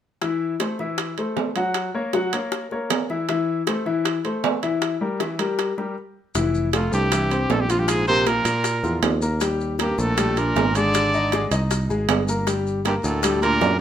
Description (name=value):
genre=Afro-Cuban jazz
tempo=157 BPM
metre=4/4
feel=straight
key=unclear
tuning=A4 = 439 Hz
part: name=clear baby grand piano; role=accompaniment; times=0.2-13.7 s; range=E3 to F#5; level=-24 LUFS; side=left 3 dB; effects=none
part: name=bongos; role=percussion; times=0.2-13.8 s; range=none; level=-31 LUFS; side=left 6 dB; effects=none
part: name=timbales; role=percussion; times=0.2-13.8 s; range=none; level=-26 LUFS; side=right 8 dB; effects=none
part: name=maracas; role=percussion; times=6.3-13.8 s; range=none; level=-35 LUFS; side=left 4 dB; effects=none
part: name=picked electric bass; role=bass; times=6.4-13.8 s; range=F1 to Bb2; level=-24 LUFS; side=right 1 dB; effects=none
part: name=clear baritone saxophone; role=second line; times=6.7-13.8 s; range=F2 to D3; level=-26 LUFS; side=right 3 dB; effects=none
part: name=clear trumpet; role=melody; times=6.8-13.8 s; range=F4 to D5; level=-23 LUFS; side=right 1 dB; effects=none
room=moderate studio reverb, RT60 0.8 s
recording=minimal, uncompressed stereo recording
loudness=-20 LUFS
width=side -10 dB against mid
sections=0.2-6.4 A section; 6.4-13.8 B section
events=stop 6.0-6.4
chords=0.2 Am6/E; 1.8 Gb; 3.3 Am/E; 4.8 Edim; 6.4 Fmaj9; 7.9 Bb5; 9.4 Ebmaj7; 10.9 Ab; 12.5 Gm